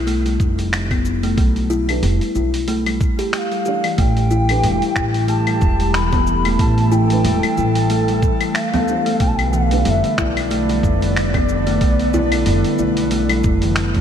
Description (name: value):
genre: organic downtempo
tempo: 92 BPM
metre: 4/4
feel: swing 57% on 16ths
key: unclear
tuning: A4 = 443 Hz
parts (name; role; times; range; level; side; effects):
- upright bass; bass; 0.0-14.0 s; E1 to B1; -20 LUFS; equal; none
- kalimba; arpeggios; 0.1-14.0 s; E3 to G4; -21 LUFS; left 1 dB; tape echo
- dusty soul sampler-style drum kit; drums; 0.1-14.0 s; cabasa, claves, finger snaps, hi-hat; -26 LUFS; left 2 dB; none
- electronic kick drum; drums; 0.4-14.0 s; none; -19 LUFS; equal; none
- felt-muted upright piano; accompaniment; 1.9-9.9 s; E3 to D5; -29 LUFS; right 4 dB; analog chorus, sidechain pumping, tape echo
- mellow bass bansuri; melody; 3.3-13.8 s; D5 to B5; -23 LUFS; left 1 dB; ping-pong delay
- airy breathy pad; sustained chords; 4.0-14.0 s; D3 to A4; -23 LUFS; right 1 dB; chorus, sidechain pumping
- frame drum; percussion; 6.1-14.0 s; none; -28 LUFS; right 4 dB; none
room: moderate lush hall reverb, RT60 2.6 s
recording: dreamy mix soaked in reverb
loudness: -15 LUFS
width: side -9 dB against mid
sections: 0.0-14.0 A section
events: none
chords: 0.0 B7(b5, no3); 4.0 A7(no3); 9.2 Bm7b5